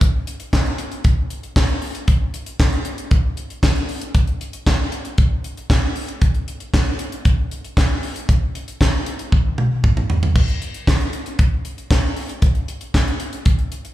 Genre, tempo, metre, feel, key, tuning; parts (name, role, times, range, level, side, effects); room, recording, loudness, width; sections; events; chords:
funk; 116 BPM; 4/4; straight
tight funk drum kit; drums; 0.0-13.9 s; crash cymbal, handclaps, hi-hat, kick drum, snare drum, toms; -17 LUFS; equal
light reverb; live gig heard through the venue's PA, club reverb; -17 LUFS; side -15 dB against mid
0.0-10.4 A section; 10.4-13.9 B section
drum fill 9.3-10.4